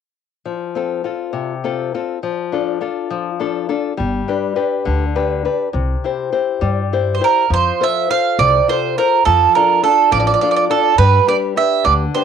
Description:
italian folk, Italian serenade; 68 BPM (dotted quarters); 6/8; straight; F major; A4 = 440 Hz
nylon-string guitar; accompaniment; 0.5-12.2 s; C3 to C5; -19 LUFS; left 8 dB; cassette tape
upright bass; bass; 4.0-12.1 s; G1 to G2; -18 LUFS; left 1 dB
mandolin; melody; 7.1-12.2 s; A4 to F5; -13 LUFS; right 8 dB; cassette tape
moderate studio reverb, RT60 0.5 s; home recording on cassette; -14 LUFS; side -7 dB against mid
0.5-7.5 A section; 7.5-12.2 B section
0.5 F; 2.2 Dm/F; 4.0 G; 5.7 C; 7.5 F; 9.3 Dm/F; 11.0 G

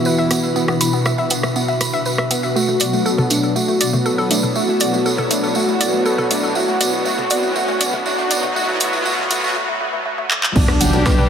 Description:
melodic techno; 120 BPM; 4/4; straight; B minor; A4 = 440 Hz
wide unison lead; melody; 0.0-11.2 s; D4 to F#4; -22 LUFS; equal; sidechain pumping, ping-pong delay
brassy analog pad; stabs; 0.0-11.3 s; B2 to G4; -23 LUFS; left 1 dB; chorus, sidechain pumping, ping-pong delay
ethereal airy pad; texture; 0.0-9.6 s; B2 to C#5; -26 LUFS; equal; ensemble chorus, built-in reverb, tremolo, sidechain pumping
woody wave-folded pluck; arpeggios; 0.1-11.2 s; A3 to B5; -22 LUFS; equal; chorus, cassette tape, sidechain pumping, ping-pong delay
tambourine; percussion; 0.1-11.3 s; -25 LUFS; right 4 dB
house drum kit; drums; 0.3-11.3 s; crash cymbal, handclaps, hi-hat, rim click, toms; -21 LUFS; equal
riser and impact; sound effects; 3.8-11.3 s; -26 LUFS; right 1 dB
fat analog bass; bass; 10.6-11.2 s; F#1 to B1; -19 LUFS; equal; tube saturation, sidechain pumping
breakbeat sampler-style drum kit; drums; 10.6-11.2 s; ride cymbal, snare drum; -30 LUFS; right 1 dB
electronic kick drum; drums; 10.6-11.2 s; -16 LUFS; equal
moderate huge ambient reverb, RT60 7.8 s; heavily compressed radio sound, high-pass filter; -15 LUFS; side -8 dB against mid
0.0-10.6 A section
build-up 0.0-10.6; filter sweep on analog synth lead 0.0-10.6; filter sweep on analog synth pad 0.0-10.6; filter sweep 0.0-10.6; riser 3.8-9.6; drum fill 10.3; impact 10.6-11.3
0.0 E5/B; 2.6 Bm7; 10.6 Gmaj7

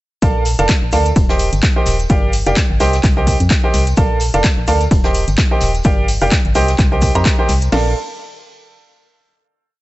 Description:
piano house; 128 BPM; 4/4; swing 56% on 16ths; Bb major; A4 = 444 Hz
bright upright piano; riff; 0.2-7.9 s; G4 to Bb5; -18 LUFS; right 2 dB; sidechain pumping, digital delay
organ-like FM bass; bass; 0.2-7.9 s; Eb1 to F2; -17 LUFS; equal; sidechain pumping
house drum kit; drums; 0.2-7.8 s; crash cymbal, kick drum, snare drum; -15 LUFS; equal; overdrive
house drum kit; drums; 0.2-7.7 s; handclaps, hi-hat; -23 LUFS; equal; overdrive
soft brush drum kit; drums; 0.2-7.6 s; hi-hat, shaker, snare drum; -30 LUFS; left 2 dB
tambourine; percussion; 0.2-7.7 s; -32 LUFS; right 2 dB
small room ambience; nothing above 8.0 kHz; -12 LUFS; side -17 dB against mid
0.2-7.7 drop; 7.7-9.6 final chord
drop 0.2-7.7
0.2 Bbmaj7; 1.2 Eb6; 2.1 Gm7; 2.8 Cm7; 4.0 Bbmaj7; 4.9 Eb6; 5.8 Gm7; 6.6 Cm7; 7.7 Bbmaj7

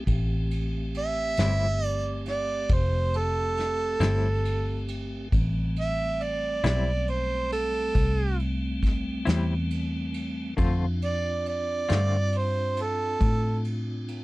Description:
slow blues; 46 BPM (dotted quarters); 12/8; straight; A minor; A4 = 440 Hz
tonewheel organ; sustained chords; 0.0-14.2 s; G3 to G4; -35 LUFS; equal; slow rotary speaker
vintage muted fingered electric bass; bass; 0.0-14.2 s; F1 to A2; -28 LUFS; equal
vintage brush drum kit; drums; 0.1-14.2 s; kick drum, ride cymbal, snare drum; -30 LUFS; equal
warm harmonica; melody; 1.0-13.6 s; A4 to E5; -28 LUFS; right 3 dB; overdrive
semi-hollow electric guitar; accompaniment; 1.4-12.2 s; A2 to F4; -30 LUFS; left 4 dB; tremolo
little or no reverb; dry, close 1970s-style studio recording; -24 LUFS; side -20 dB against mid
0.0-14.2 A section
harmonica solo 0.0-14.2
0.0 Am7; 10.6 Dm7

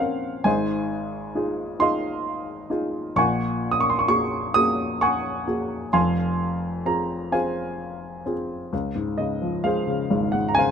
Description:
classical, lyrical solo piano; 43 BPM (dotted quarters); 6/8; rubato; A4 = 440 Hz
warm baby grand piano; solo; 0.0-10.7 s; F1 to Eb6; -22 LUFS; equal
little or no reverb; close, detailed microphones; -22 LUFS; side -7 dB against mid
0.0-8.7 A section; 8.7-10.7 B section
0.5 Fm7/Ab; 3.2 Gbadd9/Bb; 5.9 Fm; 8.7 Dbmaj7

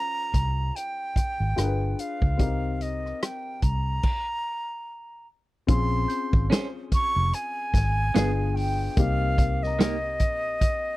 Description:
lush 1970s-style soul; 73 BPM; 4/4; swing 58% on 16ths; Bb dorian; A4 = 441 Hz
breathy silver concert flute; melody; 0.0-11.0 s; Eb5 to Db6; -29 LUFS; right 1 dB
dark baby grand piano; accompaniment; 0.0-11.0 s; Bb3 to C5; -32 LUFS; left 6 dB
vintage muted fingered electric bass; bass; 0.3-10.6 s; F1 to Db2; -26 LUFS; equal
vintage drum kit; drums; 0.3-10.8 s; crash cymbal, hi-hat, kick drum, rim click, snare drum; -24 LUFS; equal
worn celesta; texture; 6.1-11.0 s; F5 to G6; -42 LUFS; equal
electric guitar through a small old amp; riff; 6.5-10.0 s; Bb3 to C5; -30 LUFS; right 6 dB; spring reverb
little or no reverb; dry, close 1970s-style studio recording; -23 LUFS; side -18 dB against mid
0.0-5.7 A section; 5.7-11.0 B section
stop 4.0-5.7
0.0 Bbm9; 1.6 G7b9; 2.4 Cm7; 4.0 N.C.; 5.7 Bbm9; 8.2 G7b9; 9.0 Cm7

